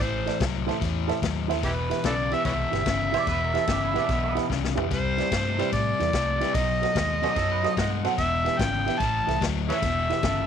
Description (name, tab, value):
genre	electric blues shuffle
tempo	146 BPM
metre	4/4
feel	swing 67% on 8ths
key	E minor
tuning	A4 = 440 Hz
part	overdriven harmonica	melody	0.0-10.5 s	E4 to A5	-27 LUFS	right 1 dB	none
part	overdriven semi-hollow guitar	riff	0.0-10.5 s	E2 to A3	-30 LUFS	left 11 dB	none
part	vintage muted fingered electric bass	bass	0.0-10.5 s	E1 to A2	-30 LUFS	right 1 dB	none
part	vintage drum kit	drums	0.0-10.4 s	kick drum, ride cymbal, snare drum, toms	-31 LUFS	left 3 dB	none
part	dark upright piano	accompaniment	0.3-10.2 s	E4 to F#5	-30 LUFS	right 14 dB	none
part	electric guitar through a small old amp	second line	3.1-4.5, 7.2-10.5 s	B3 to F#5	-32 LUFS	right 12 dB	none
room	light reverb, studio reverb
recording	1960s-style stereo with parts hard left and right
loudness	-22 LUFS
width	side -8 dB against mid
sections	0.0-10.5 A section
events	drum fill 4.5-4.9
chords	0.0 Am; 1.6 Em; 4.9 Cmaj7; 6.5 B7b9; 8.2 Em; 9.0 Am; 9.8 Em